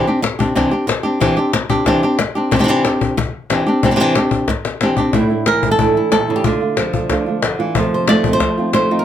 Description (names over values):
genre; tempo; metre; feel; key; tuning
flamenco; 183 BPM; 4/4; straight; unclear; A4 = 440 Hz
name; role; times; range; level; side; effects
flamenco guitar; melody; 0.0-9.0 s; A2 to D5; -15 LUFS; equal; none
cajon; percussion; 0.1-9.0 s; none; -20 LUFS; left 5 dB; none
flamenco guitar; stabs; 5.1-9.0 s; F2 to F4; -20 LUFS; right 5 dB; none
room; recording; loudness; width
light reverb; none; -14 LUFS; side -10 dB against mid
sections
0.0-5.1 A section; 5.1-9.0 B section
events
drum fill 4.6-5.1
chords
0.0 Cadd9; 5.1 Asus4; 6.4 Dm; 7.8 F7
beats
0.23 0.56 0.89 | 1.22 1.54 1.87 2.19 | 2.52 2.85 3.17 3.50 | 3.83 4.16 4.48 4.81 | 5.14 5.47 5.79 6.12 | 6.45 6.78 7.10 7.43 | 7.76 8.09 8.41 8.74